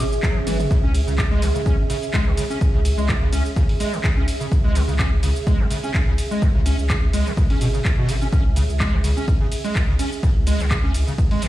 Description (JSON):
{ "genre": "acid house", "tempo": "126 BPM", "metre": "4/4", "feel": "swing 54% on 16ths", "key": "C# minor", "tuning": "A4 = 439 Hz", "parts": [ { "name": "acid bass, square", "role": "riff", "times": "0.0-11.5 s", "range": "B2 to C#4", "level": "-26 LUFS", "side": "equal", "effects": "overdrive, ensemble chorus, vintage 12-bit sampler grit, sidechain pumping, ping-pong delay" }, { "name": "round analog bass", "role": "bass", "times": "0.0-11.4 s", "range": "G#1 to C#2", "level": "-22 LUFS", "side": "equal", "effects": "sidechain pumping" }, { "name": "punchy analog drum machine", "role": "drums", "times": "0.0-11.5 s", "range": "cabasa, handclaps, hi-hat, ride cymbal, toms, woodblock", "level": "-29 LUFS", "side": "equal", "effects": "none" }, { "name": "ethereal airy pad", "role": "texture", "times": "0.0-11.5 s", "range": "C#4 to E5", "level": "-29 LUFS", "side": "right 4 dB", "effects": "ensemble chorus, built-in reverb, sidechain pumping" }, { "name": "electronic kick drum", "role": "drums", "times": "0.2-11.3 s", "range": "none", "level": "-20 LUFS", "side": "equal", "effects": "none" } ], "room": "digital ambience", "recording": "played on a big sound system in a bare room, stone room reverb", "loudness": "-17 LUFS", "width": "side -15 dB against mid", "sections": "0.0-11.5 A section", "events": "drum fill 0.5", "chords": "0.0 C#m" }